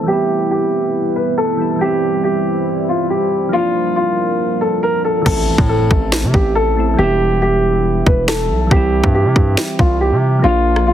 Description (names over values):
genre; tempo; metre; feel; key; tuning
hip hop, drill; 139 BPM; 4/4; half-time; A minor; A4 = 440 Hz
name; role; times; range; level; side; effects
dark grand piano; melody; 0.0-10.9 s; F4 to B4; -17 LUFS; right 1 dB; low-pass filter, digital delay
soft electric-piano-like synth keys; accompaniment; 0.0-10.9 s; E3 to F4; -21 LUFS; left 1 dB; chorus, low-pass filter
deep dark ambient pad; sustained chords; 0.0-5.2 s; F3 to C5; -22 LUFS; right 1 dB; chorus, built-in reverb, low-pass filter
distorted 808-style bass; bass; 5.3-10.9 s; E1 to C3; -17 LUFS; equal; distortion
drill drum kit; drums; 5.3-10.9 s; crash cymbal, finger snaps, kick drum, rim click, snare drum; -15 LUFS; equal; overdrive
impact; sound effects; 5.4-7.0 s; none; -28 LUFS; equal; none
room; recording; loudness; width
light reverb; heavily compressed radio sound, multiband compression; -13 LUFS; side -10 dB against mid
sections
0.0-5.3 A section; 5.3-10.9 B section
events
filter sweep 0.0-5.3; hi-hats muted 5.3-10.9; impact 5.3-7.0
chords
0.1 Em; 1.8 C; 3.5 Bb; 5.3 Am; 7.0 Em; 8.7 C